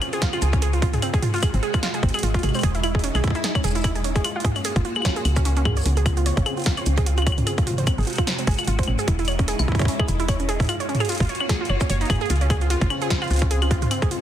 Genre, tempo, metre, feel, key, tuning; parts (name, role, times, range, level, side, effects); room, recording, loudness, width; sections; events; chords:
IDM; 149 BPM; 4/4; swing 56% on 16ths; Db major; A4 = 440 Hz
soft string machine; sustained chords; 0.0-14.2 s; C3 to Gb4; -30 LUFS; equal; phaser, ensemble chorus, sidechain pumping
warbly dusty pluck; arpeggios; 0.0-14.2 s; C4 to Db5; -28 LUFS; right 2 dB; chorus, vintage 12-bit sampler grit, ping-pong delay
electro analog drum machine; drums; 0.0-14.2 s; cabasa, claves, hi-hat, snare drum, toms; -26 LUFS; equal
electronic kick drum; drums; 0.2-14.1 s; -24 LUFS; equal
woody FM bass; bass; 0.4-13.9 s; E1 to Db2; -22 LUFS; equal
light reverb; dense, heavily limited modern master; -19 LUFS; side -11 dB against mid
0.0-14.2 A section
0.0 Dbmaj7; 1.0 Ab7; 2.6 Emaj7; 4.2 Gbmaj7; 5.9 Dbmaj7; 7.5 Ab7; 9.1 Emaj7; 10.7 Gbmaj7; 12.3 Dbmaj7